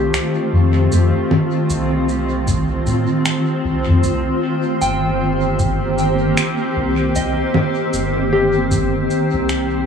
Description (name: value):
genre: ambient dub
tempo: 77 BPM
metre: 4/4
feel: swing 59% on 16ths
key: C dorian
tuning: A4 = 441 Hz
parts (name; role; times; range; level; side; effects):
- granular cloud pad; sustained chords; 0.0-9.9 s; Eb3 to C5; -18 LUFS; equal; built-in reverb
- soft synth bell; arpeggios; 0.0-9.9 s; G4 to G5; -25 LUFS; left 2 dB; chorus, tape echo
- soft dub sub bass; bass; 0.0-9.9 s; G1 to A2; -19 LUFS; equal; tube saturation
- electronic finger snaps, shaker and congas; drums; 0.1-9.7 s; none; -22 LUFS; equal; dub echo
- electronic kick drum; drums; 2.5-8.9 s; none; -22 LUFS; equal; none
room: moderate spring reverb, RT60 2.4 s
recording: small room ambience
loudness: -15 LUFS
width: side -7 dB against mid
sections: 0.0-9.9 A section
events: none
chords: 0.0 F7; 4.0 Cm7